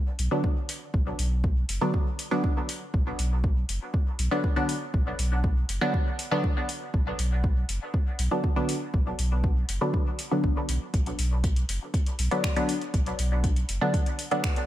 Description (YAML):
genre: dub techno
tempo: 120 BPM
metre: 4/4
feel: straight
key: B minor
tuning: A4 = 440 Hz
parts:
  - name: filtered dub chord stab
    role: stabs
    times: 0.0-14.7 s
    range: D3 to D4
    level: -29 LUFS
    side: equal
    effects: chorus, phaser, sidechain pumping, dub echo
  - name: warm sub bass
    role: bass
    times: 0.2-13.8 s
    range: F#1 to B1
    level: -27 LUFS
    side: equal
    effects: tube saturation, sidechain pumping
  - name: soft vintage rhythm box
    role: drums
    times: 0.2-14.7 s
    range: finger snaps, hi-hat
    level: -34 LUFS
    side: left 2 dB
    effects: none
  - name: electronic kick drum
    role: drums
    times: 0.4-14.5 s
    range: none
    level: -26 LUFS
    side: equal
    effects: overdrive
room: light reverb, digital ambience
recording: none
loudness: -24 LUFS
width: side -13 dB against mid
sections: 0.0-14.7 A section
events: none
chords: 0.0 Bm